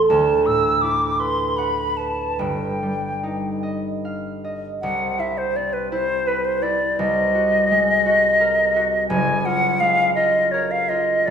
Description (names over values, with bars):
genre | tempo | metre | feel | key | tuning
classical, impressionist duo for flute and harp | 48-58 BPM (dotted quarters) | 6/8 | rubato | unclear | A4 = 440 Hz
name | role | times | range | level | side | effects
hollow concert flute | melody | 0.0-11.3 s | B4 to E6 | -19 LUFS | equal | none
concert harp | accompaniment | 0.0-11.3 s | F#1 to A5 | -23 LUFS | right 2 dB | none
room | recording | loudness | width
wet recital hall reverb, RT60 1.6 s | recorded in a church or concert hall | -18 LUFS | side -7 dB against mid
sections
0.0-4.8 A section; 4.8-11.3 B section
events
none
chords
0.1 D69; 2.4 Gaug7; 4.8 Cmaj7; 7.0 Ab9/C; 9.1 F#maj9